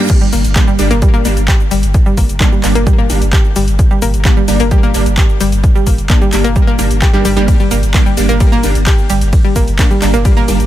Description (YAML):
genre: driving peak-time techno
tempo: 130 BPM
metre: 4/4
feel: straight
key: G minor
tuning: A4 = 443 Hz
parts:
  - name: rave stab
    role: stabs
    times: 0.0-10.6 s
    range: G3 to D4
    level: -19 LUFS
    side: right 2 dB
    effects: chorus, built-in reverb, sidechain pumping, ping-pong delay
  - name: electronic kick drum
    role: drums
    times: 0.1-10.3 s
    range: none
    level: -11 LUFS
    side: equal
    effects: none
  - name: techno drum kit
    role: drums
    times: 0.1-10.7 s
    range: crash cymbal, handclaps, hi-hat, ride cymbal, shaker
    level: -21 LUFS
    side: left 1 dB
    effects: overdrive
  - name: analog pluck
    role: riff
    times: 0.2-10.4 s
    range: G3 to G4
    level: -17 LUFS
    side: equal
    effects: chorus, sidechain pumping, ping-pong delay
  - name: warm sub bass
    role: bass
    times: 0.3-10.7 s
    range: G1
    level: -15 LUFS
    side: equal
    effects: overdrive, sidechain pumping, low-pass filter
room: little or no reverb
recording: none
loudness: -9 LUFS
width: side -13 dB against mid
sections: 0.1-10.7 A section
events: drop 0.1-10.7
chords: 0.1 Gm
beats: | 0.10 0.56 1.02 1.48 | 1.94 2.40 2.87 3.33 | 3.79 4.25 4.71 5.17 | 5.63 6.10 6.56 7.02 | 7.48 7.94 8.40 8.87 | 9.33 9.79 10.25